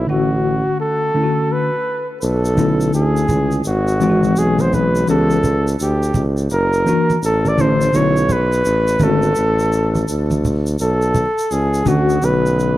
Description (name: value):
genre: hip hop, jazz-hop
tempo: 84 BPM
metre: 4/4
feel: swing 64% on 16ths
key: B dorian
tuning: A4 = 442 Hz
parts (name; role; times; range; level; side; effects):
- breathy flugelhorn; melody; 0.0-12.8 s; F#4 to D5; -19 LUFS; equal; none
- warm tuba; bass; 0.0-12.8 s; F#1 to D2; -18 LUFS; equal; none
- mellow tine electric piano; accompaniment; 0.1-12.8 s; D3 to G4; -19 LUFS; left 2 dB; overdrive, medium stereo tremolo
- tube shaker and congas; percussion; 2.2-12.8 s; none; -24 LUFS; right 1 dB; none
room: light reverb, small room ambience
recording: dark, warm production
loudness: -14 LUFS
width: side -15 dB against mid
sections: 0.0-2.2 A section; 2.2-12.8 B section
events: none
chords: 0.0 Bm9; 2.2 Bm11; 3.7 G#7alt; 5.1 C#m7b5; 6.5 F#7alt; 7.9 Bm9